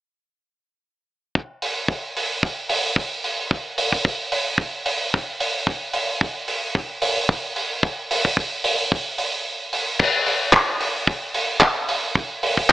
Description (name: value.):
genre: nu-disco.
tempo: 111 BPM.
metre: 4/4.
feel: swing 55% on 16ths.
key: none.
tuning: none.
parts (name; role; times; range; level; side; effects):
kick drum; drums; 1.4-12.7 s; none; -19 LUFS; equal; none.
damped 70s drum kit; drums; 1.6-12.7 s; crash cymbal, handclaps, hi-hat; -24 LUFS; right 1 dB; none.
room: little or no reverb.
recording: AM radio sound.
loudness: -20 LUFS.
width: side -15 dB against mid.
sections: 1.3-10.0 A section; 10.0-12.7 B section.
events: kick drops out 9.5-10.0.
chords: none.